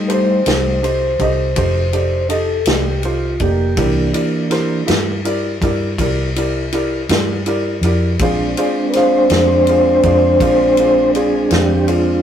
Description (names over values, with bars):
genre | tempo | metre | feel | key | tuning
slow blues | 54 BPM (dotted quarters) | 12/8 | straight | unclear | A4 = 440 Hz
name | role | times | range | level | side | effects
mellow tonewheel organ | sustained chords | 0.0-12.2 s | E3 to C5 | -15 LUFS | equal | slow rotary speaker
clear upright piano | accompaniment | 0.1-12.2 s | Eb4 to F5 | -21 LUFS | equal | none
natural country drum kit | drums | 0.1-12.1 s | kick drum, ride cymbal, snare drum | -22 LUFS | equal | none
vintage muted fingered electric bass | bass | 0.5-12.2 s | F1 to G2 | -20 LUFS | equal | none
room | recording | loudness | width
light reverb | rough rehearsal-room recording | -13 LUFS | side -9 dB against mid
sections
0.0-12.2 A section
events
tonewheel organ solo 0.0-12.2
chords
0.0 F7; 3.8 C7; 8.2 Bb7